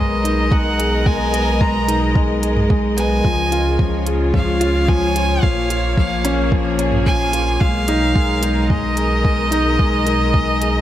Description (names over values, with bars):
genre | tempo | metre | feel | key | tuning
piano and strings electronica | 110 BPM | 4/4 | straight | G# dorian | A4 = 440 Hz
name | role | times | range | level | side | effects
clear violin | melody | 0.0-10.8 s | D#5 to A#5 | -22 LUFS | right 1 dB | none
rich studio string section | sustained chords | 0.0-10.8 s | A#2 to D#5 | -23 LUFS | left 1 dB | none
dark concert grand piano | riff | 0.0-10.8 s | E#3 to G#4 | -20 LUFS | left 2 dB | digital delay
warm sub bass | bass | 0.0-10.8 s | A#1 to C#2 | -21 LUFS | equal | sidechain pumping
organic electronic drum kit | drums | 0.3-10.7 s | hi-hat, toms | -25 LUFS | right 2 dB | small room reverb
electronic kick drum | drums | 0.5-10.4 s | none | -17 LUFS | equal | small room reverb
room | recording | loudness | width
light reverb | none | -15 LUFS | side -12 dB against mid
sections
0.0-10.8 A section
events
none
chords
0.0 G#madd9/B; 3.2 C#; 5.4 A#m7; 7.6 G#madd9/B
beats
0.52 | 1.06 1.61 2.15 2.70 | 3.25 3.79 4.34 4.88 | 5.43 5.97 6.52 7.06 | 7.61 8.15 8.70 9.25 | 9.79 10.34